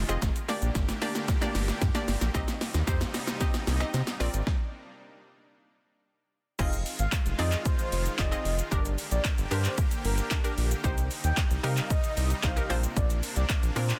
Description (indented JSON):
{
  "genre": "dance-pop",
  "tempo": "113 BPM",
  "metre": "4/4",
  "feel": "straight",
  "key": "C minor",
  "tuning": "A4 = 440 Hz",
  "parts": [
    { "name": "supersaw pad", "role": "sustained chords", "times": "0.0-14.0 s", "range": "C3 to G4", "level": "-41 LUFS", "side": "equal", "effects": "sidechain pumping" },
    { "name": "round analog bass", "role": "bass", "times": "0.0-13.9 s", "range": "F1 to C3", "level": "-31 LUFS", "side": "equal", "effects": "sidechain pumping" },
    { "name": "glassy wavetable pluck", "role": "accompaniment", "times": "0.1-14.0 s", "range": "Bb3 to Eb5", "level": "-37 LUFS", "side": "equal", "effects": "chorus, sidechain pumping" },
    { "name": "pop drum kit", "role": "drums", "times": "0.1-14.0 s", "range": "crash cymbal, handclaps, hi-hat, kick drum, shaker, snare drum", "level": "-32 LUFS", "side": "equal", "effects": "overdrive" },
    { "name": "egg shaker", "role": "percussion", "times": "0.1-14.0 s", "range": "none", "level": "-51 LUFS", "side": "equal", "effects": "none" },
    { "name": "airy dreamy lead", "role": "melody", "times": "6.6-14.0 s", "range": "Bb4 to G5", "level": "-39 LUFS", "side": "equal", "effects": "chorus, sidechain pumping, dub echo" }
  ],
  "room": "little or no reverb",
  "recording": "dense, heavily limited modern master",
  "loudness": "-28 LUFS",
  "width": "mono",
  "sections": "0.0-6.6 A section; 6.6-14.0 B section",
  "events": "build-up 0.0-6.6; drum fill 0.0-4.5; stop 4.5-6.6; drop 6.6-14.0",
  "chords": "0.2 Gm; 2.3 Cm; 4.2 Bbadd9; 5.5 N.C.; 6.6 Fm7; 8.7 Gm; 10.8 Cm; 12.7 Bbadd9",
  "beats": "| 0.22 0.75 1.28 1.81 | 2.35 2.88 3.41 3.94 | 4.47 5.00 5.53 6.06 | 6.59 7.12 7.66 8.19 | 8.72 9.25 9.78 10.31 | 10.84 11.37 11.90 12.43 | 12.96 13.50"
}